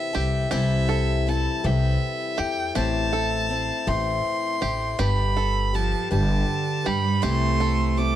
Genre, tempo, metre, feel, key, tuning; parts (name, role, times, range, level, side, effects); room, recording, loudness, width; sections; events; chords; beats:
indie folk with a building arrangement; 54 BPM (dotted quarters); 6/8; straight; C major; A4 = 440 Hz
warm fiddle; melody; 0.0-8.2 s; E5 to D6; -27 LUFS; right 2 dB
picked swing-style acoustic guitar; accompaniment; 0.0-8.2 s; A2 to C5; -29 LUFS; left 7 dB
bluegrass banjo; arpeggios; 0.1-8.2 s; G4 to A4; -32 LUFS; right 6 dB
upright bass; bass; 0.2-8.2 s; G1 to G2; -24 LUFS; equal
clear cello; second line; 5.7-8.2 s; D3 to A3; -27 LUFS; right 7 dB
little or no reverb; dry, close 1970s-style studio recording; -21 LUFS; side -12 dB against mid
0.0-8.2 A section
0.0 C6; 2.8 Am; 5.0 G; 7.2 C6
| 0.52 1.64 | 2.76 3.88 | 5.00 6.11 | 7.23